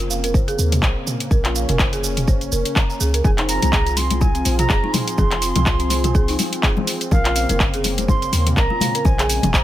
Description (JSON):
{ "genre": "afro house", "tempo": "124 BPM", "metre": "4/4", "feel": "swing 56% on 16ths", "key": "unclear", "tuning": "A4 = 440 Hz", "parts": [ { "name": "warm analog pad", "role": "sustained chords", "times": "0.0-9.6 s", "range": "Db3 to Ab4", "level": "-27 LUFS", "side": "left 1 dB", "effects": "lush chorus, sidechain pumping" }, { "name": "folk marimba with medium hard mallets", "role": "arpeggios", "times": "0.0-9.6 s", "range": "C4 to Bb5", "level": "-26 LUFS", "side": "equal", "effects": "sidechain pumping, dub echo" }, { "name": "warm 808-style bass", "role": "bass", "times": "0.0-9.6 s", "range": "F1 to Eb2", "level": "-22 LUFS", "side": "equal", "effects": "sidechain pumping" }, { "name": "house drum kit", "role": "drums", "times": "0.0-9.6 s", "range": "handclaps, hi-hat, shaker, toms", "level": "-22 LUFS", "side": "equal", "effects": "none" }, { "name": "electronic kick drum", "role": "drums", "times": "0.3-9.6 s", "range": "none", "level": "-18 LUFS", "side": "equal", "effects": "none" }, { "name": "mellow jazz flute", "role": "melody", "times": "3.2-9.6 s", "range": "F5 to C6", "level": "-25 LUFS", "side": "right 3 dB", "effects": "dub echo" }, { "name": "congas", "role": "percussion", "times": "3.2-9.5 s", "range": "none", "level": "-25 LUFS", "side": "left 4 dB", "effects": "none" } ], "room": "little or no reverb", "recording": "none", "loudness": "-16 LUFS", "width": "side -13 dB against mid", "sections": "0.0-9.6 A section", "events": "none", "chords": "0.0 Bbmadd9; 3.2 Fm; 7.1 Bbmadd9" }